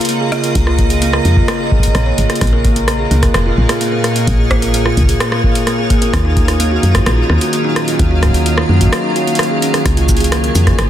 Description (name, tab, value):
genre	IDM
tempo	129 BPM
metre	4/4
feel	straight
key	Db major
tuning	A4 = 436 Hz
part	icy glass pad	sustained chords	0.0-10.9 s	Bb2 to F5	-18 LUFS	equal	chorus, built-in reverb, sidechain pumping
part	kalimba	arpeggios	0.0-10.9 s	Bb3 to Db5	-19 LUFS	equal	low-pass filter, digital delay
part	electro analog drum machine	drums	0.0-10.9 s	hi-hat, rim click, shaker	-19 LUFS	equal	soft clipping on snare, digital delay
part	woody FM bass	bass	0.6-10.9 s	F1 to Gb2	-14 LUFS	equal	none
part	electronic kick drum	drums	0.6-10.8 s	none	-15 LUFS	equal	none
part	pulsing gated texture	texture	2.4-10.9 s	F4 to Ab5	-26 LUFS	right 1 dB	chorus, built-in reverb
room	light reverb, digital ambience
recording	dense, heavily limited modern master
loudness	-11 LUFS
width	side -11 dB against mid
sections	0.0-9.9 A section; 9.9-10.9 B section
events	break 8.9-9.9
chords	0.0 Db6; 2.4 Bbm7; 6.1 Ebm11; 9.9 Db6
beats	0.09 | 0.55 1.02 1.48 1.95 | 2.41 2.88 3.34 3.81 | 4.27 4.74 5.20 5.67 | 6.13 6.60 7.06 7.53 | 8.00 8.46 8.93 9.39 | 9.86 10.32 10.79